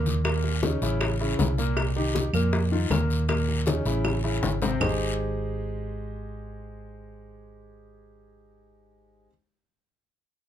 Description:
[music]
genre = Afro-Cuban jazz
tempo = 158 BPM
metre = 4/4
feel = straight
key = Ab major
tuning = A4 = 440 Hz
[part]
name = clear concert grand piano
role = accompaniment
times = 0.0-9.3 s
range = Bb2 to Eb5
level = -30 LUFS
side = left 2 dB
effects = none
[part]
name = hollow-body short-scale fingered electric bass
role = bass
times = 0.0-9.3 s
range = Ab1 to F2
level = -27 LUFS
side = right 1 dB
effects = none
[part]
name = congas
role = percussion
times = 0.1-4.9 s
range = none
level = -32 LUFS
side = left 3 dB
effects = none
[part]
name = guiro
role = percussion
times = 0.1-4.9 s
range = none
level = -38 LUFS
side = left 5 dB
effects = none
[part]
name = bongos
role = percussion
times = 0.2-4.9 s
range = none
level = -31 LUFS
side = left 4 dB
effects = none
[part]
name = claves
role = percussion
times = 0.2-4.9 s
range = none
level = -34 LUFS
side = right 3 dB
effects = none
[sound]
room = little or no reverb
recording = close, detailed microphones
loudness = -23 LUFS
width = side -10 dB against mid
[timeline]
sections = 0.0-4.8 A section; 4.8-7.8 B section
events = drum fill 4.0-4.8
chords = 0.2 Eb5; 1.0 A; 1.8 Cm7; 2.5 F7sus4; 3.3 Eb5; 4.0 A; 4.8 Abmaj7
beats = | 0.25 0.63 1.01 1.39 | 1.77 2.15 2.53 2.91 | 3.29 3.67 4.05 4.43 | 4.81 5.19 5.57 5.95 | 6.33 6.71 7.09 7.47

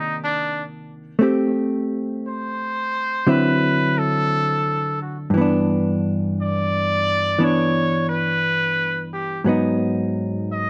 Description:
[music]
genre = jazz ballad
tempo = 58 BPM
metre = 4/4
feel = swing 66% on 8ths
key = unclear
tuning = A4 = 440 Hz
[part]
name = bright trumpet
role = melody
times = 0.0-10.7 s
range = D4 to Eb5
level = -24 LUFS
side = equal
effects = none
[part]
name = hollow-body jazz guitar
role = accompaniment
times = 0.0-10.7 s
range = G2 to G4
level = -23 LUFS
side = equal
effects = none
[sound]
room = light reverb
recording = recorded outdoors, with no room sound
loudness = -21 LUFS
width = mono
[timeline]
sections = 0.0-10.7 A section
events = trumpet solo 0.0-10.7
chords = 0.0 Cm9; 1.2 Am7; 3.3 D9; 5.3 G6; 9.4 Abm7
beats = 0.18 | 1.21 2.24 3.27 4.29 | 5.33 6.36 7.38 8.41 | 9.44 10.47

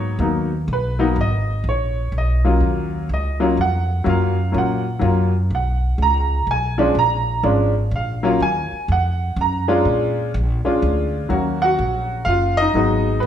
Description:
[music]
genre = jazz piano trio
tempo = 124 BPM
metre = 3/4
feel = swing 66% on 8ths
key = Eb minor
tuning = A4 = 441 Hz
[part]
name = clear upright piano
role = melody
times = 0.0-13.3 s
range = F3 to Bb5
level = -19 LUFS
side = equal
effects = none
[part]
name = upright bass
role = bass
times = 0.0-13.3 s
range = Gb1 to Bb2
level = -20 LUFS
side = equal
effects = none
[sound]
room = wet large studio reverb, RT60 1.2 s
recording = band playing live in one room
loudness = -17 LUFS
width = side -10 dB against mid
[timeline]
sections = 0.0-11.3 A section; 11.3-13.3 B section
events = upright piano solo 0.0-11.3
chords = 0.0 Abm7; 2.6 Ebm7; 5.5 B5; 7.0 Bbm7; 8.4 Ebm; 9.8 Bb7#9; 11.3 Ebm7; 12.7 Abm7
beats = 0.20 0.68 | 1.16 1.65 2.13 | 2.61 3.09 3.57 | 4.06 4.54 5.02 | 5.50 5.99 6.47 | 6.95 7.43 7.92 | 8.40 8.88 9.36 | 9.85 10.33 10.81 | 11.30 11.78 12.26 | 12.75 13.23

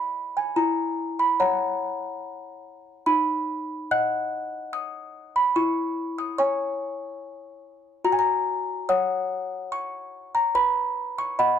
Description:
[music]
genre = classical, lullaby for music box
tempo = 72 BPM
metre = 3/4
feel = straight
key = B major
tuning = A4 = 440 Hz
[part]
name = music box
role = solo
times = 0.0-11.6 s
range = D#4 to F#6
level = -23 LUFS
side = equal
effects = none
[sound]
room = small room reverb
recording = dry, close 1970s-style studio recording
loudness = -23 LUFS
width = side -8 dB against mid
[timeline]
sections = 0.0-11.6 A section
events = none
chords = 0.0 Emaj7 (rootless); 0.6 F#7/E; 3.1 B/D#; 5.6 C#m/E; 8.1 F#5; 10.5 B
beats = | 0.57 1.40 2.24 | 3.07 3.91 4.74 | 5.57 6.40 7.22 | 8.05 8.89 9.72 | 10.55 11.38

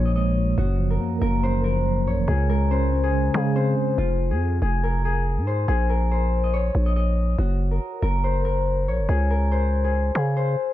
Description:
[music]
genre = hip hop, drill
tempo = 141 BPM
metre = 4/4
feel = half-time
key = F phrygian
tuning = A4 = 440 Hz
[part]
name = concert harp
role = melody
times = 0.0-10.7 s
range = F4 to Eb5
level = -26 LUFS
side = left 3 dB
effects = low-pass filter, ping-pong delay
[part]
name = mellow tine electric piano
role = accompaniment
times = 0.0-4.0 s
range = Gb2 to Db4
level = -24 LUFS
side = right 1 dB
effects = medium stereo tremolo, low-pass filter
[part]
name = growling 808-style bass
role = bass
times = 0.0-10.6 s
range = F1 to Db3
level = -22 LUFS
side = equal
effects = none
[sound]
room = studio reverb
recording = dark, warm production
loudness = -20 LUFS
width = side -13 dB against mid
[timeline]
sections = 0.0-4.0 A section; 4.0-10.7 B section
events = none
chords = 0.0 Bb5; 0.6 Gbmaj7; 2.3 Db5; 4.0 Fm; 5.7 Bbm11; 7.4 Gb; 9.1 Bbm9/Db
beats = 0.15 | 0.58 1.00 1.43 1.85 | 2.28 2.71 3.13 3.56 | 3.98 4.41 4.83 5.26 | 5.68 6.11 6.54 6.96 | 7.39 7.81 8.24 8.66 | 9.09 9.52 9.94 10.37

